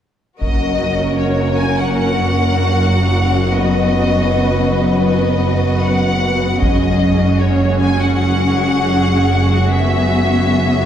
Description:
cinematic, epic orchestral film score; 77 BPM; 4/4; straight; F# major; A4 = 440 Hz
rich symphonic violin section; melody; 0.4-10.9 s; C#5 to G#5; -20 LUFS; left 3 dB
warm symphonic violin section; second line; 0.4-10.9 s; F#4 to B4; -23 LUFS; left 1 dB
warm symphonic viola section; accompaniment; 0.4-10.9 s; F#3 to C#4; -22 LUFS; right 2 dB
mellow French horn section; sustained chords; 0.4-10.9 s; F#3 to C#4; -22 LUFS; left 2 dB
rich symphonic cello section; bass; 0.4-10.9 s; F#2; -20 LUFS; right 1 dB
rich symphonic double bass section; bass; 0.4-10.9 s; F#1; -18 LUFS; right 1 dB
taiko ensemble; drums; 0.4-1.9, 6.6-8.1 s; -21 LUFS; equal
wet concert hall reverb, RT60 2.3 s; heard from further back in the room; -13 LUFS; side -9 dB against mid
0.4-10.9 A section
0.4 F#; 3.5 B/F#; 6.6 C#sus4/F#; 9.7 Eadd9/F#

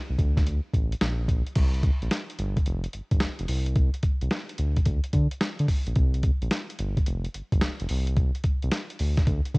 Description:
R&B, new jack swing; 109 BPM; 4/4; swing 66% on 16ths; A4 = 439 Hz
round analog bass; bass; 0.1-9.6 s; F1 to D3; -26 LUFS; equal; tube saturation
dusty soul sampler-style drum kit; drums; 0.2-9.6 s; crash cymbal, hi-hat, kick drum, snare drum; -25 LUFS; equal; cassette tape
little or no reverb; home recording on cassette; -23 LUFS; side -31 dB against mid
0.0-1.6 A section; 1.6-9.6 B section

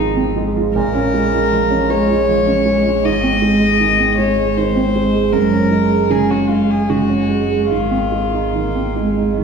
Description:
neoclassical piano and strings; 78 BPM; 3/4; uneven beats, rubato; Bb minor; A4 = 439 Hz
rich violin; melody; 0.0-9.3 s; Eb4 to Eb5; -19 LUFS; left 5 dB
warm cello; second line; 0.0-9.4 s; Eb3 to Bb3; -20 LUFS; right 4 dB
warm upright piano; accompaniment; 0.0-9.4 s; Gb2 to Ab4; -17 LUFS; right 3 dB
saturated sub bass; bass; 0.0-9.4 s; Gb1 to Bb1; -25 LUFS; equal
wet scoring stage reverb, RT60 1.5 s; heard from further back in the room, small room reverb; -13 LUFS; side -6 dB against mid
0.0-9.4 A section
0.0 Fm7/Ab; 0.7 Bbm7; 3.0 Ab; 5.3 Gbadd9; 7.7 Fm7/Ab

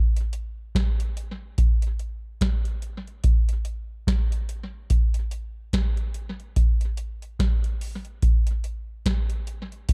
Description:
reggae; 72 BPM; 4/4; swing 58% on 16ths
booming analog drum machine; drums; 0.2-9.9 s; hi-hat, kick drum, snare drum; -25 LUFS; equal
little or no reverb; dark, warm production; -25 LUFS; mono
0.0-9.9 A section

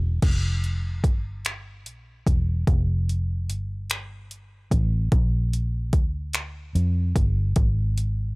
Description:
slow six-eight R&B; 49 BPM (dotted quarters); 6/8; straight; F dorian; A4 = 441 Hz
vintage muted fingered electric bass; bass; 0.0-8.4 s; E1 to F2; -24 LUFS; equal; tube saturation
smooth R&B drum kit; drums; 0.2-8.2 s; crash cymbal, finger snaps, hi-hat, kick drum; -23 LUFS; equal; overdrive
little or no reverb; dry, gritty hardware recording, transformer saturation; -22 LUFS; side -30 dB against mid
0.2-8.4 A section

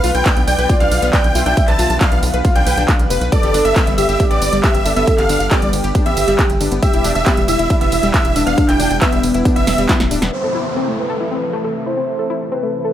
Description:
uplifting trance; 137 BPM; 4/4; straight; A minor; A4 = 444 Hz
big supersaw lead; melody; 0.0-9.8 s; D5 to A5; -20 LUFS; right 1 dB; sidechain pumping, dub echo
warm baby grand piano; second line; 0.0-9.8 s; D6 to A6; -31 LUFS; right 2 dB
warm velvety synth lead; second line; 0.0-12.9 s; B3 to F5; -20 LUFS; right 1 dB; chorus, cassette tape, digital delay
lush unison pad; sustained chords; 0.0-12.9 s; C3 to B4; -26 LUFS; right 1 dB; chorus, sidechain pumping
analog pluck; arpeggios; 0.0-12.9 s; G3 to B4; -23 LUFS; left 4 dB; chorus, sidechain pumping, dub echo
tight sequencer bass; bass; 0.0-10.3 s; D1 to C2; -21 LUFS; equal; sidechain pumping
big-room dance drum kit; drums; 0.0-10.3 s; handclaps, hi-hat, ride cymbal, snare drum, tambourine; -22 LUFS; right 1 dB; low-pass filter on hats, low-pass filter on perc, low-pass filter on cymbals, low-pass filter on snare
electronic kick drum; drums; 0.3-10.0 s; -16 LUFS; equal
downlifter; sound effects; 10.3-12.9 s; -27 LUFS; equal
light reverb; -13 LUFS; side -11 dB against mid
0.0-10.3 A section; 10.3-12.9 B section
drop 0.0-10.3; drum fill 9.7-10.3; filter sweep on synth pluck 10.3-12.9
0.0 Bdim; 3.3 G; 6.8 Em7; 10.3 Am

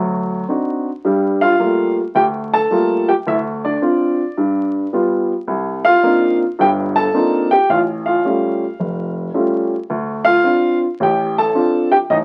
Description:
solo jazz; 108 BPM; 4/4; swing 67% on 8ths; G minor; A4 = 439 Hz
warm upright piano; solo; 0.0-12.2 s; E#1 to A5; -17 LUFS; equal
moderate studio reverb, RT60 0.7 s; very old 78 rpm record, vinyl crackle; -17 LUFS; mono
0.0-1.0 A section; 1.0-12.2 B section
0.0 D7b9; 1.0 Gm9; 3.3 Dm9; 4.4 G7; 5.5 Cm11; 7.7 Aaug7; 9.9 Dm7

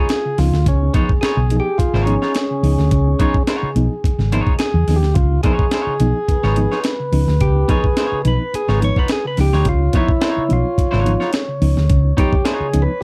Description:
funk; 107 BPM; 4/4; straight; Db mixolydian; A4 = 440 Hz
percussive tonewheel organ; melody; 0.0-13.0 s; Db4 to Db5; -24 LUFS; equal; overdrive, stopped rotary speaker
warm trombone; second line; 0.0-13.0 s; F4 to Db5; -29 LUFS; equal
electric guitar at the edge of break-up; accompaniment; 0.0-12.7 s; Cb4 to Db5; -27 LUFS; equal
mellow reed electric piano; stabs; 0.1-12.9 s; Db3 to Eb4; -27 LUFS; equal; fast tremolo
breakbeat sampler-style drum kit; drums; 0.1-12.9 s; hi-hat, kick drum, snare drum; -22 LUFS; equal
hollow-body short-scale fingered electric bass; bass; 0.4-12.9 s; Ab1 to Fb2; -18 LUFS; equal
little or no reverb; dry, close 1970s-style studio recording; -17 LUFS; mono
0.0-13.0 A section
tonewheel organ solo 0.0-13.0
0.0 Db9

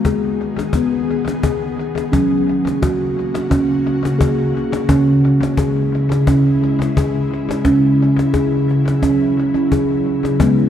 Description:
world meditative, meditative tuned percussion; 87 BPM; 4/4; swing 56% on 16ths; A4 = 439 Hz
ethereal airy pad; sustained chords; 0.0-10.7 s; B2 to G#4; -21 LUFS; left 1 dB; ensemble chorus, built-in reverb
steel tongue drum; arpeggios; 0.0-10.7 s; C#3 to G#4; -16 LUFS; equal; analog delay
cajon; percussion; 0.0-10.7 s; -22 LUFS; left 2 dB; analog delay
wet echo chamber reverb, RT60 2.4 s; echo-heavy mix, cassette tape; -14 LUFS; side -10 dB against mid
0.0-10.4 A section
0.0 G#m; 2.1 F#; 4.9 C#m

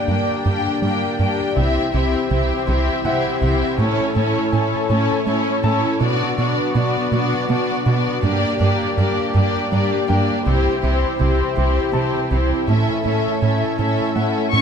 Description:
cinematic; 54 BPM (dotted quarters); 6/8; straight; A4 = 439 Hz
warm symphonic violin section; second line; 0.0-14.6 s; F#4 to G5; -23 LUFS; left 4 dB
rich symphonic viola section; accompaniment; 0.0-14.6 s; Bb3 to E4; -25 LUFS; right 1 dB
chorused pulse-width pad; sustained chords; 0.0-14.6 s; A3 to D5; -24 LUFS; left 1 dB
bright baby grand piano; texture; 0.0-14.6 s; E4 to A5; -32 LUFS; left 3 dB; tape echo
rubbery square bass; riff; 0.1-14.6 s; C2 to B3; -22 LUFS; right 1 dB
rich symphonic cello section; bass; 0.1-14.6 s; G2 to C#4; -25 LUFS; right 3 dB
warm symphonic violin section; melody; 14.5-14.6 s; C#6; -17 LUFS; left 5 dB
moderate scoring stage reverb, RT60 1.7 s; -16 LUFS; side -7 dB against mid
0.0-14.6 A section
build-up 0.0-14.6
0.0 Gm; 1.6 C; 3.8 A; 6.0 Bm; 8.2 Gm; 10.5 C; 12.7 A

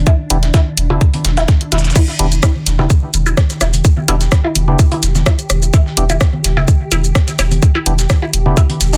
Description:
minimal techno; 127 BPM; 4/4; swing 53% on 16ths; E minor; A4 = 440 Hz
round analog bass; bass; 0.0-9.0 s; E1; -18 LUFS; equal; sidechain pumping
swarming drone; texture; 0.0-9.0 s; D4 to G4; -34 LUFS; equal; built-in reverb, sidechain pumping
resonant blip pluck; riff; 0.1-9.0 s; D4 to E4; -24 LUFS; equal; phaser, lush chorus, cassette tape, sidechain pumping, tape echo
dusty soul sampler-style drum kit; drums; 0.1-9.0 s; hi-hat, shaker, snare drum; -30 LUFS; equal; high-pass filter on snare, small room ambience, high-pass filter on perc, high-pass filter on hats
electronic kick drum; drums; 0.1-8.7 s; -13 LUFS; equal; overdrive, small room ambience
percussive organ stab; stabs; 0.3-8.6 s; B3 to G4; -26 LUFS; equal; chorus, digital delay
garage drum kit; drums; 0.3-9.0 s; crash cymbal, hi-hat, rim click, shaker; -20 LUFS; equal; overdrive, small room ambience
congas; percussion; 0.3-8.8 s; -24 LUFS; equal; small room ambience
little or no reverb; dense, heavily limited modern master; -14 LUFS; mono
0.0-9.0 A section
0.0 Em7

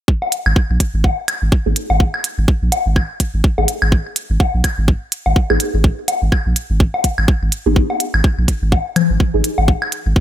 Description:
minimal techno; 125 BPM; 4/4; swing 58% on 16ths; G# minor; A4 = 443 Hz
electronic kick drum; drums; 0.1-10.2 s; -14 LUFS; equal; overdrive
woodblock and congas; percussion; 0.2-9.9 s; -21 LUFS; left 3 dB
electronic hi-hat; drums; 0.3-10.0 s; -22 LUFS; right 3 dB; overdrive
saturated sub bass; bass; 0.5-10.1 s; G#1 to A#1; -17 LUFS; equal; sidechain pumping
filtered dub chord stab; stabs; 1.7-9.4 s; B3 to G#4; -22 LUFS; right 1 dB; phaser, wide subtle chorus, ping-pong delay
light reverb, digital ambience; bright 1980s-style digital production; -14 LUFS; side -12 dB against mid
0.1-10.2 A section

